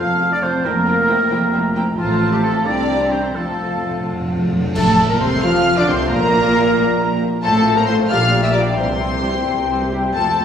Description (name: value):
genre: classical, dramatic, fast romantic movement for symphony orchestra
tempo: 89 BPM (dotted quarters)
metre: 6/8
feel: rubato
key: F major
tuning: A4 = 441 Hz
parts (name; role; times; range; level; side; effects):
- warm symphonic violin section; melody; 0.0-10.4 s; F5 to F6; -23 LUFS; left 2 dB; none
- mellow clarinet; second line; 0.0-10.4 s; F4 to F5; -26 LUFS; left 1 dB; none
- mellow large flute ensemble; second line; 0.0-10.4 s; F5 to F6; -26 LUFS; left 2 dB; none
- rich symphonic violin section; second line; 0.0-10.4 s; F4 to F5; -28 LUFS; left 3 dB; none
- warm oboe; second line; 0.0-10.4 s; F4 to F5; -24 LUFS; right 1 dB; none
- rich symphonic viola section; accompaniment; 0.0-10.4 s; G3 to A4; -26 LUFS; equal; none
- mellow French horn section; sustained chords; 0.0-10.4 s; F3 to G4; -25 LUFS; left 1 dB; none
- concert harp; arpeggios; 0.0-10.4 s; F2 to C6; -29 LUFS; left 5 dB; none
- rich symphonic double bass section; bass; 0.0-10.4 s; F1 to F2; -24 LUFS; right 1 dB; none
- warm symphonic cello section; bass; 0.0-10.4 s; F2 to F3; -23 LUFS; right 1 dB; none
- timpani; percussion; 0.6-1.3, 3.4-6.7 s; F2; -25 LUFS; equal; none
- cymbal swell, clash cymbals and concert bass drum; percussion; 2.0-5.6 s; none; -31 LUFS; equal; none
- mellow bassoon; accompaniment; 4.8-10.4 s; E3 to F4; -27 LUFS; equal; none
- warm trombone section; sustained chords; 4.8-10.4 s; A2 to A3; -27 LUFS; right 2 dB; none
- warm trumpet section; stabs; 4.8-10.4 s; G4 to F5; -28 LUFS; right 1 dB; none
room: wet scoring stage reverb, RT60 1.9 s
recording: heard from further back in the room, small room reverb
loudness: -14 LUFS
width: side -8 dB against mid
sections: 0.0-4.8 A section; 4.8-10.4 B section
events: timpani fill 3.4-4.8; band accent 4.8-5.2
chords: 0.0 F; 0.7 C7/F; 2.0 F/A; 2.7 C7; 3.4 F; 4.8 F/A; 6.1 C7/Bb; 7.4 F/A; 8.1 Gm7/Bb; 8.8 C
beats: | 0.65 1.31 | 1.98 2.66 | 3.35 4.06 | 4.76 5.44 | 6.11 6.77 | 7.43 8.09 | 8.77 9.46 | 10.15